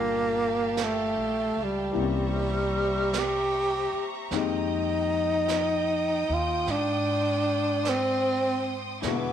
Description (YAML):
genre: jazz ballad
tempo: 51 BPM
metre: 4/4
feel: swing 67% on 8ths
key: unclear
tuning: A4 = 440 Hz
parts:
  - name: breathy tenor saxophone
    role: melody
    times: 0.0-9.3 s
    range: G3 to G4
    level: -26 LUFS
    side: equal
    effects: none
  - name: warm baby grand piano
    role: accompaniment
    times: 0.0-9.3 s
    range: Bb2 to A4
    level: -33 LUFS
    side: left 10 dB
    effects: none
  - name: clear studio string section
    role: sustained chords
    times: 0.0-9.3 s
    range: F#4 to Eb6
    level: -35 LUFS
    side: right 2 dB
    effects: none
  - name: upright bass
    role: bass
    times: 0.0-9.3 s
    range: G1 to Ab2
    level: -34 LUFS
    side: equal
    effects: none
  - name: jazz brush drum kit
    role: drums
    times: 0.8-9.3 s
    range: brushed snare drum, hi-hat, snare drum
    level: -38 LUFS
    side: right 9 dB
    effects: none
room: moderate echo chamber reverb, RT60 2.2 s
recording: 1960s-style stereo with parts hard left and right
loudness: -24 LUFS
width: side -9 dB against mid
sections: 0.0-9.3 A section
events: none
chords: 0.0 Gm9; 2.0 C7b9; 4.3 Fm11